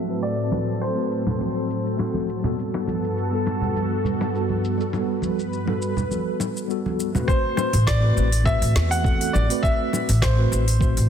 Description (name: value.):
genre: sunset chillout.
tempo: 102 BPM.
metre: 4/4.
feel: swing 54% on 16ths.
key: A dorian.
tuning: A4 = 440 Hz.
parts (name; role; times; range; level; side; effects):
clear baby grand piano; melody; 0.0-2.2, 7.3-11.1 s; C5 to F#5; -27 LUFS; equal; vintage 12-bit sampler grit, digital delay.
mellow tine electric piano; accompaniment; 0.0-11.1 s; G3 to C5; -27 LUFS; moving between left 7 dB and right 7 dB; medium stereo tremolo, auto-pan, ping-pong delay.
lush unison pad; sustained chords; 0.0-7.3 s; G2 to B4; -26 LUFS; left 1 dB; chorus.
deep house drum kit; drums; 0.1-11.1 s; congas, hi-hat, shaker, snare drum; -29 LUFS; left 3 dB; none.
congas; percussion; 0.5-7.3 s; none; -30 LUFS; right 4 dB; none.
electronic kick drum; drums; 7.3-10.9 s; none; -23 LUFS; equal; none.
upright bass; bass; 7.7-11.1 s; A1 to E2; -19 LUFS; equal; none.
room: light reverb, digital ambience.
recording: dense, heavily limited modern master, low-pass filter.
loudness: -20 LUFS.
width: side -8 dB against mid.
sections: 0.0-7.3 A section; 7.3-11.1 B section.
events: filter sweep 0.0-7.3.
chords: 0.0 Am69; 2.6 Gmaj9; 7.3 Am69.